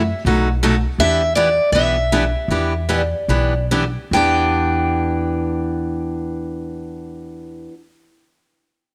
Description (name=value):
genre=acoustic string swing (jazz manouche)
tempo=139-164 BPM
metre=4/4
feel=swing 62% on 8ths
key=E minor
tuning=A4 = 440 Hz
part: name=picked steel-string acoustic guitar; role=melody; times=0.0-7.7 s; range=D5 to G5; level=-22 LUFS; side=equal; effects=none
part: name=upright bass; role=bass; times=0.0-7.7 s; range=B1 to F#2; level=-24 LUFS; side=equal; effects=none
part: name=picked steel-string acoustic guitar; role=accompaniment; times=0.3-7.8 s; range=B2 to G4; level=-23 LUFS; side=equal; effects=none
room=light reverb, small room ambience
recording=none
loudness=-18 LUFS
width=mono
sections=0.0-4.1 A section; 4.1-7.6 B section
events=slowing down 1.0-4.1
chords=0.3 B7; 1.0 Em7